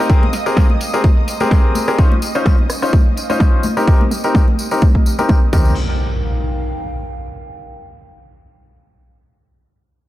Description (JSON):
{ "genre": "piano house", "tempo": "127 BPM", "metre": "4/4", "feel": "swing 55% on 16ths", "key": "Eb major", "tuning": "A4 = 441 Hz", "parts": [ { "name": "analog string pad", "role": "sustained chords", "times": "0.0-5.5 s", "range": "Eb5 to Eb6", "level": "-30 LUFS", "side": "right 4 dB", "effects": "ensemble chorus, sidechain pumping" }, { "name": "bright concert grand piano", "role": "riff", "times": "0.0-5.7 s", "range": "C4 to C5", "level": "-19 LUFS", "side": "left 2 dB", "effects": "sidechain pumping, low-pass filter, digital delay" }, { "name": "warbly tape-like pad", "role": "texture", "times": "0.0-7.6 s", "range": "Ab3 to C6", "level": "-31 LUFS", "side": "right 1 dB", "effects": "chorus, built-in reverb, sidechain pumping" }, { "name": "electronic kick drum", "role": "drums", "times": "0.1-5.6 s", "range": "none", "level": "-12 LUFS", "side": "equal", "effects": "overdrive" }, { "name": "punchy analog drum machine", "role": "drums", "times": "0.1-5.6 s", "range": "crash cymbal, hi-hat, rim click, snare drum", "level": "-23 LUFS", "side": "equal", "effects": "low-pass filter on hats, low-pass filter on snare, low-pass filter on cymbals" }, { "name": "tambourine and congas", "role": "percussion", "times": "0.1-5.7 s", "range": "none", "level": "-24 LUFS", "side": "left 2 dB", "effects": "none" }, { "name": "solid FM bass", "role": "bass", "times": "5.5-5.7 s", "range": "Eb2", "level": "-20 LUFS", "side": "equal", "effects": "tube saturation, sidechain pumping" }, { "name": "impact", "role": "sound effects", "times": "5.5-7.4 s", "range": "none", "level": "-22 LUFS", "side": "equal", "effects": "none" } ], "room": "little or no reverb", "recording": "dense, heavily limited modern master", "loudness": "-12 LUFS", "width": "side -15 dB against mid", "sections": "0.0-5.8 A section; 5.8-7.7 B section", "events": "filter sweep on drum 0.0-5.8; filter sweep on grand piano 0.0-5.8", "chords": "0.1 Abmaj9; 2.0 Dbmaj9; 3.6 Cm7; 5.5 Eb6; 5.8 Eb" }